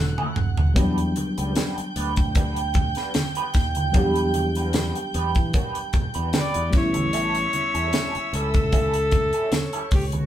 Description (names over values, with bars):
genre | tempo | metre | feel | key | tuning
lush 1970s-style soul | 75 BPM | 4/4 | swing 54% on 16ths | E dorian | A4 = 440 Hz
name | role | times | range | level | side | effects
warm viola | melody | 0.0-0.3, 6.4-10.3 s | F#4 to D5 | -25 LUFS | left 2 dB | none
warm studio string section | second line | 0.0-10.3 s | C#5 to G6 | -32 LUFS | right 4 dB | none
reed electric piano | accompaniment | 0.0-10.3 s | F#3 to G4 | -28 LUFS | left 1 dB | overdrive, fast tremolo
fingered electric bass | bass | 0.0-10.3 s | D#1 to E3 | -27 LUFS | equal | none
electric guitar through a small old amp | riff | 0.2-10.2 s | F#3 to B4 | -31 LUFS | right 4 dB | wah, tremolo
tight funk drum kit | drums | 0.2-10.3 s | hi-hat, kick drum, snare drum, toms | -23 LUFS | equal | none
congas | percussion | 0.2-10.3 s | none | -31 LUFS | right 2 dB | none
room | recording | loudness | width
moderate studio reverb, RT60 0.6 s | band playing live in one room | -20 LUFS | side -12 dB against mid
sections
0.0-10.3 A section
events
drum fill 0.0-0.8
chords
0.0 F#m7; 0.8 Em7; 6.7 A7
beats
| 0.76 1.56 2.35 3.15 | 3.95 4.74 5.54 6.33 | 7.13 7.92 8.72 9.52